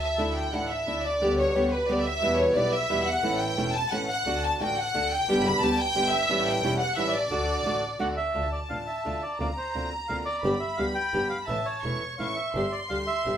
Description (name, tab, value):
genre	tango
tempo	174 BPM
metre	3/4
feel	rubato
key	D major, D minor from 8.3 s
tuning	A4 = 440 Hz
part	clear studio violin section	second line	0.0-13.4 s	B4 to C#6	-27 LUFS	equal	none
part	flamenco guitar	accompaniment	0.2-13.4 s	B2 to G4	-28 LUFS	equal	none
part	warm symphonic string section	stabs	0.2-8.3 s	B3 to B4	-41 LUFS	equal	none
part	warm double bass	bass	0.2-13.4 s	E1 to E2	-35 LUFS	equal	none
part	bandoneon	melody	8.0-13.4 s	C5 to G5	-30 LUFS	right 2 dB	none
room	wet studio reverb, RT60 0.5 s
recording	band playing live in one room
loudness	-24 LUFS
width	side -9 dB against mid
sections	0.2-8.3 A section; 8.3-13.4 B section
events	band accent 0.0; violin section solo 0.2-8.3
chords	0.2 Dsus2; 1.2 G/D; 2.2 Em; 3.2 A; 4.3 D; 5.3 G; 6.3 A7; 7.3 D; 8.3 Dm; 9.4 Bbadd9/D; 10.4 G; 11.5 A; 12.6 G5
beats	| 0.18 0.53 0.87 | 1.21 1.55 1.89 | 2.22 2.56 2.90 | 3.23 3.57 3.91 | 4.25 4.60 4.94 | 5.28 5.62 5.96 | 6.30 6.63 6.97 | 7.31 7.65 7.99 | 8.35 8.70 9.05 | 9.40 9.75 10.10 | 10.44 10.79 11.14 | 11.49 11.84 12.20 | 12.55 12.91 13.26